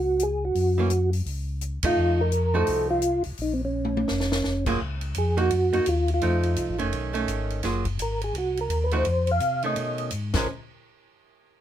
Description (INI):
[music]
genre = soul jazz organ trio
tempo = 169 BPM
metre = 4/4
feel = swing 63% on 8ths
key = unclear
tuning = A4 = 438 Hz
[part]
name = percussive tonewheel organ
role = melody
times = 0.0-10.5 s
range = C4 to F5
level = -25 LUFS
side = right 1 dB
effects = slow rotary speaker, chorus vibrato
[part]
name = mellow tonewheel organ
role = bass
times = 0.0-10.5 s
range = F1 to C3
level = -27 LUFS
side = left 1 dB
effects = chorus vibrato, slow rotary speaker
[part]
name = compact cocktail drum kit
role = drums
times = 0.2-10.4 s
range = crash cymbal, hi-hat, kick drum, ride cymbal, snare drum, toms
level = -33 LUFS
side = left 1 dB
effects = none
[part]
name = archtop guitar, miked and amplified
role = accompaniment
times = 0.8-10.5 s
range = Eb3 to Ab4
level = -28 LUFS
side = right 4 dB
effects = none
[sound]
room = moderate studio reverb, RT60 0.5 s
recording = minimal, uncompressed stereo recording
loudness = -22 LUFS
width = side -11 dB against mid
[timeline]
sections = 0.0-4.8 A section; 4.8-10.5 B section; 10.5-11.6 C section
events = band accent 1.8; drum fill 3.7-4.4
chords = 0.0 Gb5; 2.0 F7b9; 3.4 Bbm; 4.8 Gbmaj7; 5.5 Ebmadd9; 6.2 F7; 6.9 B9; 7.6 Gbmaj9; 8.3 Cm7b5; 9.1 F7; 9.8 B9; 10.3 Bbm7; 10.5 N.C.